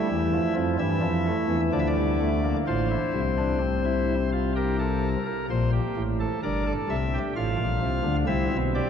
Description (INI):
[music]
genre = classical, baroque-style 4-part fugue for pipe organ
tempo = 64 BPM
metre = 3/4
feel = straight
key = F major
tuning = A4 = 440 Hz
[part]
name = pipe organ, cornet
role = solo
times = 0.0-8.9 s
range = G1 to F5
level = -23 LUFS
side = left 1 dB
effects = none
[sound]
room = wet cathedral reverb, RT60 5.4 s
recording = dark, warm production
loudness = -23 LUFS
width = side -8 dB against mid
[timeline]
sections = 0.0-2.7 A section; 2.7-8.9 B section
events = none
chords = 0.0 Fmaj9/E; 1.7 Dm; 2.7 F/A; 4.6 Gm; 5.5 C7; 7.4 F/A; 8.3 C